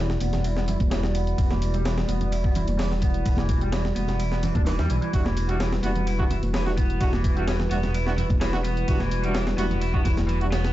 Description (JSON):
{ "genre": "breakbeat, breaks", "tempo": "128 BPM", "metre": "4/4", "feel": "straight", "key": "E minor", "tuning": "A4 = 440 Hz", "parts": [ { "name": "warbly tape-like pad", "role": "sustained chords", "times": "0.0-10.7 s", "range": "G3 to D5", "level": "-31 LUFS", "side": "right 1 dB", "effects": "chorus, built-in reverb, sidechain pumping" }, { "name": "cranked stack guitar", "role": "riff", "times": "0.0-10.7 s", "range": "E3 to E4", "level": "-32 LUFS", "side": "equal", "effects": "overdrive, low-pass filter" }, { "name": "dark detuned saw bass", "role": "bass", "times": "0.0-10.7 s", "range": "E1 to E2", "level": "-26 LUFS", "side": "equal", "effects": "none" }, { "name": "breakbeat sampler-style drum kit", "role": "drums", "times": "0.1-10.7 s", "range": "hi-hat, kick drum, ride cymbal, snare drum", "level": "-26 LUFS", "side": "equal", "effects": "studio reverb" }, { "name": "electronic hi-hat", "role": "drums", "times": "0.2-10.7 s", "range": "none", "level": "-44 LUFS", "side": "left 3 dB", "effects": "studio reverb" }, { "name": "congas", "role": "percussion", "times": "0.2-10.3 s", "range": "none", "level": "-33 LUFS", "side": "right 1 dB", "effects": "none" }, { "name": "warm brass ensemble", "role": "stabs", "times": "5.1-10.5 s", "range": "G3 to F#4", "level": "-32 LUFS", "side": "right 2 dB", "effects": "low-pass filter, ping-pong delay" } ], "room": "little or no reverb", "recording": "dark, warm production, vinyl crackle, nothing above 7.8 kHz", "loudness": "-22 LUFS", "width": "side -14 dB against mid", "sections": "0.0-10.7 A section", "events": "filter sweep on overdriven electric guitar 0.0-10.7", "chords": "0.0 Em9" }